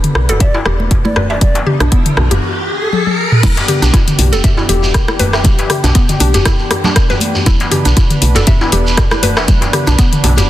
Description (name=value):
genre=afro house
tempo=119 BPM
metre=4/4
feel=swing 55% on 16ths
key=E minor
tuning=A4 = 436 Hz
part: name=warm analog pad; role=sustained chords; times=0.0-10.5 s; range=E3 to B4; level=-22 LUFS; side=left 1 dB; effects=chorus, sidechain pumping
part: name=afro-pop drum kit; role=drums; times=0.0-10.5 s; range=crash cymbal, hi-hat, rim click, toms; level=-16 LUFS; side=left 1 dB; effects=none
part: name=riser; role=sound effects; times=1.1-3.4 s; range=none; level=-20 LUFS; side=left 1 dB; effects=none
part: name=woody FM bass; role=bass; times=0.1-10.5 s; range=E1 to B1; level=-15 LUFS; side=equal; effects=sidechain pumping
part: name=mallet-like synth pluck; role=arpeggios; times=0.3-10.4 s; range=B3 to E5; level=-20 LUFS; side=equal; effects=chorus, sidechain pumping, dub echo
part: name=congas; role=percussion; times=0.3-10.5 s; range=none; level=-22 LUFS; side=right 1 dB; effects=none
part: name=djembe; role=percussion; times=0.3-10.5 s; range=none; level=-20 LUFS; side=left 1 dB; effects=none
part: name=breathy mellow bansuri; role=melody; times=0.4-3.0 s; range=A4 to D5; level=-24 LUFS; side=equal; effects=dub echo
part: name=electronic kick drum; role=drums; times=0.4-10.1 s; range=none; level=-12 LUFS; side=equal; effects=none
part: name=shekere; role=percussion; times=3.4-10.5 s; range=none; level=-23 LUFS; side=right 2 dB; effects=none
room=light reverb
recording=dense, heavily limited modern master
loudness=-10 LUFS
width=side -14 dB against mid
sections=0.0-3.4 A section; 3.4-10.5 B section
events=riser 1.1-3.4; break 2.4-3.4; drum fill 2.9-3.4; drop 3.4-10.5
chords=0.0 E7(no3); 3.4 Em7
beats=0.41 0.91 | 1.41 1.92 2.42 2.93 | 3.43 3.94 4.44 4.94 | 5.45 5.95 6.46 6.96 | 7.46 7.97 8.47 8.98 | 9.48 9.98 10.49